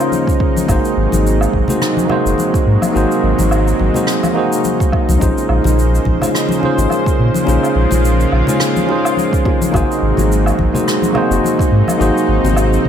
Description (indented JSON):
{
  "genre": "sunset chillout",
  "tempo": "106 BPM",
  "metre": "4/4",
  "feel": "swing 55% on 16ths",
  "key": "unclear",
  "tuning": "A4 = 440 Hz",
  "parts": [
    { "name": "tine electric piano", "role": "accompaniment", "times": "0.0-12.9 s", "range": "Bb3 to C5", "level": "-17 LUFS", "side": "equal", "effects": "auto-pan, digital delay" },
    { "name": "lush unison pad", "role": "sustained chords", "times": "0.0-12.9 s", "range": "C3 to C5", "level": "-19 LUFS", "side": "right 2 dB", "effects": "chorus" },
    { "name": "shaker, woodblock and rim click", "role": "drums", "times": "0.0-12.8 s", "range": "none", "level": "-24 LUFS", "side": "right 1 dB", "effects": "gated reverb" },
    { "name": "congas and bongos", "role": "percussion", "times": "0.1-12.5 s", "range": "none", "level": "-23 LUFS", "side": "left 4 dB", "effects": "none" },
    { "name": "electronic kick drum", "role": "drums", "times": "0.3-12.9 s", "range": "none", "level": "-17 LUFS", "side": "equal", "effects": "none" },
    { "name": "warm sub bass", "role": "bass", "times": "0.7-12.9 s", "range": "Gb1 to Bb2", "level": "-15 LUFS", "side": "equal", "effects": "none" }
  ],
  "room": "moderate plate reverb, RT60 1.9 s, small room ambience",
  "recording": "bright 1980s-style digital production",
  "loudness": "-12 LUFS",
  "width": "side -9 dB against mid",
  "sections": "0.0-12.9 A section",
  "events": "none",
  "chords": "0.0 Bbm11; 0.7 Ab9; 5.2 Bbm11; 9.7 Ab9"
}